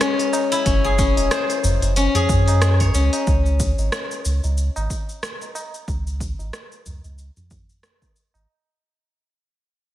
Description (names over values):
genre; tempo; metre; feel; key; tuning
organic downtempo; 92 BPM; 4/4; swing 57% on 16ths; C# harmonic minor; A4 = 440 Hz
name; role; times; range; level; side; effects
steel-string zither; arpeggios; 0.0-5.8 s; G#3 to C#5; -21 LUFS; left 4 dB; digital delay
organic electronic drum kit; drums; 0.0-8.5 s; hi-hat, rim click, shaker; -27 LUFS; equal; none
tabla; percussion; 0.2-8.5 s; none; -29 LUFS; right 1 dB; none
warm sub bass; bass; 0.7-8.5 s; E1 to F#2; -20 LUFS; equal; none
electronic kick drum; drums; 0.7-8.1 s; none; -23 LUFS; equal; none
room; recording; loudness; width
moderate scoring stage reverb, RT60 1.7 s; big arena sound; -17 LUFS; side -13 dB against mid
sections
0.0-3.3 A section; 3.3-8.5 B section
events
fade-out 3.3-8.5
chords
0.0 F#5; 3.3 C#5